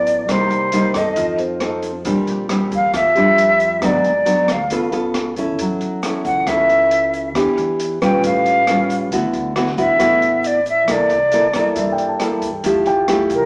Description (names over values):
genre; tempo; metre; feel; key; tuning
bossa nova; 136 BPM; 4/4; straight; unclear; A4 = 442 Hz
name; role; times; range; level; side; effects
jazz flute; melody; 0.0-13.5 s; Bb4 to G5; -18 LUFS; equal; none
nylon-string guitar; accompaniment; 0.0-13.5 s; G2 to A4; -22 LUFS; equal; none
warm grand piano; accompaniment; 0.0-3.9, 8.0-8.4, 11.8-13.5 s; C4 to A5; -27 LUFS; equal; none
upright bass; bass; 0.0-13.5 s; G#1 to G2; -34 LUFS; equal; none
open jazz drum kit; drums; 0.1-13.4 s; hi-hat, kick drum, rim click; -30 LUFS; equal; none
tube shaker; percussion; 0.1-13.5 s; none; -49 LUFS; equal; none
room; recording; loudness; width
moderate large studio reverb, RT60 1.1 s; band playing live in one room, small speaker sound; -17 LUFS; mono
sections
0.0-12.7 A section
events
none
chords
0.3 Cm7; 1.2 F7; 2.1 Bb69; 3.8 G#m7b5; 4.7 C#7alt; 5.6 F#m7; 7.4 Em7; 8.2 Aaug7; 9.1 D69; 10.9 C13; 12.7 Fmaj9